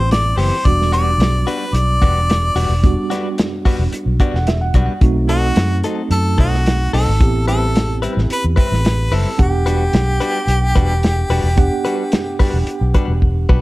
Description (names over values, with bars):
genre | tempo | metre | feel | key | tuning
straight-eighth soul blues | 110 BPM | 4/4 | straight | E minor | A4 = 440 Hz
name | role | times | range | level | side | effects
clear harmonica | melody | 0.0-13.2 s | F#4 to D5 | -21 LUFS | left 1 dB | none
tine electric piano | accompaniment | 0.0-13.6 s | G3 to F#5 | -23 LUFS | right 4 dB | overdrive, medium stereo tremolo
vintage muted fingered electric bass | bass | 0.0-13.6 s | E1 to F#2 | -16 LUFS | equal | none
warm soul drum kit | drums | 0.1-13.6 s | hi-hat, kick drum, snare drum | -17 LUFS | equal | none
direct-recorded clean electric guitar | stabs | 0.4-13.6 s | E3 to B4 | -25 LUFS | left 4 dB | slapback echo
room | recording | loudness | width
small room ambience | none | -14 LUFS | side -19 dB against mid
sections
0.0-13.6 A section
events
tine electric piano fill 3.9-5.0; drum fill 13.2-13.6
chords
0.0 Am9; 0.7 Em9; 5.0 B7b9; 7.2 Am9; 9.4 Em9